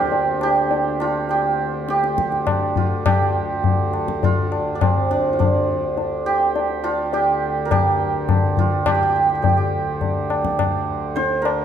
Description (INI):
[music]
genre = indian classical, Hindustani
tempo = 103 BPM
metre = 5/4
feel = straight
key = D raga malkauns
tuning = A4 = 441 Hz
[part]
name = santur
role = melody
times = 0.0-11.6 s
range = Bb3 to C5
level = -20 LUFS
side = right 3 dB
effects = none
[part]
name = pedal harmonium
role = drone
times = 0.0-11.6 s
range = D2 to D3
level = -27 LUFS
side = equal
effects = none
[part]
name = tabla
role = percussion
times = 0.1-11.6 s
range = none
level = -21 LUFS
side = left 4 dB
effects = none
[sound]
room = moderate scoring stage reverb, RT60 1.8 s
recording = none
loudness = -17 LUFS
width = side -9 dB against mid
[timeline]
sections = 0.0-11.6 A section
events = speeding up 0.0-11.6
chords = none